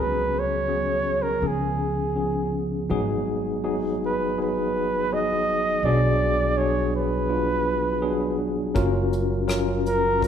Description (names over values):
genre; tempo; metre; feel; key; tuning
acoustic folk-pop ballad; 82 BPM; 4/4; straight; unclear; A4 = 440 Hz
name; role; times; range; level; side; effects
warm flugelhorn; melody; 0.0-10.3 s; G#4 to D#5; -24 LUFS; right 2 dB; none
tine electric piano; accompaniment; 0.0-10.3 s; F#1 to A#4; -25 LUFS; left 1 dB; fast stereo tremolo
upright bass; bass; 0.0-10.3 s; F#1 to C#2; -29 LUFS; equal; none
soft brush drum kit; drums; 8.8-10.3 s; hi-hat, kick drum, rim click; -29 LUFS; left 2 dB; none
room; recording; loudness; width
moderate recital hall reverb, RT60 1.9 s; recorded in a church or concert hall; -21 LUFS; side -8 dB against mid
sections
0.0-2.9 A section; 2.9-10.3 B section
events
none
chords
0.0 C#7sus4; 1.4 C#7; 2.9 G#m7; 5.8 Bm6; 8.8 F#maj7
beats
0.69 1.42 2.16 | 2.90 3.64 4.37 5.10 | 5.84 6.57 7.29 8.02 | 8.75 9.48 10.22